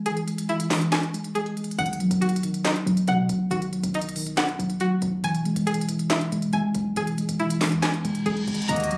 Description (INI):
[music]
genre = hip hop, trap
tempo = 139 BPM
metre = 4/4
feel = half-time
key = unclear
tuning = A4 = 440 Hz
[part]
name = muted felt-like synth keys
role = accompaniment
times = 0.0-9.0 s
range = D#3 to G#3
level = -24 LUFS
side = equal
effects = chorus, low-pass filter
[part]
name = string-like resonator pluck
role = arpeggios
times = 0.0-9.0 s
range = D#4 to Bb5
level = -28 LUFS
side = equal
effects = chorus, low-pass filter, tape echo
[part]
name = trap drum kit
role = drums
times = 0.1-9.0 s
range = handclaps, hi-hat, snare drum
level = -29 LUFS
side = equal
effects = none
[part]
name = hard-hitting 808-style bass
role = bass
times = 1.8-9.0 s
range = E1 to B2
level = -34 LUFS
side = equal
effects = none
[part]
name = reverse cymbal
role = sound effects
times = 8.0-8.7 s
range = none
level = -35 LUFS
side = left 1 dB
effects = none
[part]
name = accordion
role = sustained chords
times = 8.7-9.0 s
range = Bb3 to Eb5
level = -24 LUFS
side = left 1 dB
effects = stereo widening
[sound]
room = light reverb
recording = recorded on a phone in the room, club reverb, compression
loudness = -22 LUFS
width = side -28 dB against mid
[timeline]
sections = 0.0-8.7 A section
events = break 0.0-1.8; reverse cymbal 8.0-8.7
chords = 0.0 E; 1.8 B; 5.2 E